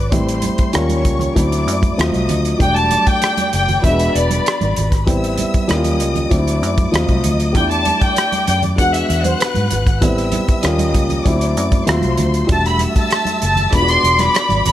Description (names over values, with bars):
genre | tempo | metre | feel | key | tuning
lush 1970s-style soul | 97 BPM | 4/4 | straight | E minor | A4 = 439 Hz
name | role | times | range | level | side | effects
warm symphonic string section | second line | 0.0-14.7 s | B4 to F#6 | -25 LUFS | left 1 dB | none
dark baby grand piano | accompaniment | 0.0-14.7 s | F#3 to G4 | -20 LUFS | left 1 dB | none
vintage muted fingered electric bass | bass | 0.0-14.7 s | E1 to G#2 | -19 LUFS | equal | none
warm soul drum kit | drums | 0.1-14.7 s | hi-hat, kick drum, rim click | -19 LUFS | equal | none
congas | percussion | 0.1-14.7 s | none | -26 LUFS | right 5 dB | none
dark studio violin section | melody | 2.6-14.7 s | B4 to C6 | -17 LUFS | left 1 dB | none
room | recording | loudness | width
light reverb, small room ambience | none | -13 LUFS | side -12 dB against mid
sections
0.0-14.7 A section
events
none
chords
0.1 Am7; 0.7 D#9; 1.4 D9; 2.0 D#dim7; 2.6 Em11; 3.8 E7; 5.1 Am7; 5.7 D#9; 6.3 D9; 6.9 D#dim7; 7.5 Em11; 8.8 E7; 10.0 Am7; 10.6 D#9; 11.3 D9; 11.9 D#dim7; 12.5 Em11; 13.7 E7